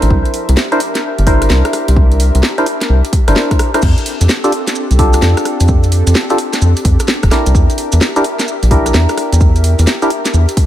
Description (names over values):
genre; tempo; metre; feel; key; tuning
UK garage, two-step garage; 129 BPM; 4/4; swing 65% on 16ths; unclear; A4 = 440 Hz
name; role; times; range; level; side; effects
airy breathy pad; sustained chords; 0.0-10.7 s; C4 to E5; -22 LUFS; left 2 dB; chorus, sidechain pumping
percussive organ stab; stabs; 0.0-10.1 s; D4 to C5; -17 LUFS; equal; wide subtle chorus, ping-pong delay
rubbery square bass; bass; 0.0-10.5 s; F1 to F2; -10 LUFS; equal; none
house drum kit; drums; 0.0-10.7 s; crash cymbal, hi-hat, rim click, snare drum; -18 LUFS; equal; studio ambience
electronic kick drum; drums; 0.1-10.7 s; none; -12 LUFS; equal; studio ambience
maracas; percussion; 3.8-10.6 s; none; -26 LUFS; right 4 dB; none
room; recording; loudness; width
digital ambience; none; -10 LUFS; side -12 dB against mid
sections
0.0-10.7 A section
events
drum fill 3.5-3.8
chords
0.1 C9; 3.8 F69; 7.5 Em7b5